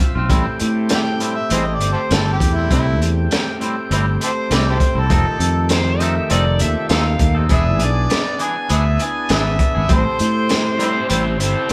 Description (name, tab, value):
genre	straight-eighth soul blues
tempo	100 BPM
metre	4/4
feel	straight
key	A minor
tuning	A4 = 439 Hz
part	overdriven tonewheel organ	accompaniment	0.0-11.7 s	Eb3 to E5	-28 LUFS	equal	slow rotary speaker
part	twangy electric guitar	stabs	0.0-11.7 s	A2 to A4	-28 LUFS	equal	spring reverb
part	fretless electric bass	bass	0.2-11.5 s	E1 to A2	-21 LUFS	equal	none
part	crunchy breakbeat drum kit	drums	0.3-11.7 s	hi-hat, kick drum, snare drum	-22 LUFS	equal	none
part	overdriven harmonica	melody	0.9-11.1 s	E4 to G#5	-24 LUFS	equal	none
part	warm horn section	sustained chords	5.1-11.7 s	C4 to A4	-31 LUFS	equal	none
part	overdriven slide guitar	second line	5.7-11.7 s	E4 to F5	-25 LUFS	equal	none
room	moderate stone room reverb, RT60 1.0 s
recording	band playing live in one room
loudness	-17 LUFS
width	mono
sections	0.0-11.7 A section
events	none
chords	0.3 Am7; 5.1 F7; 7.5 E7; 9.9 Am7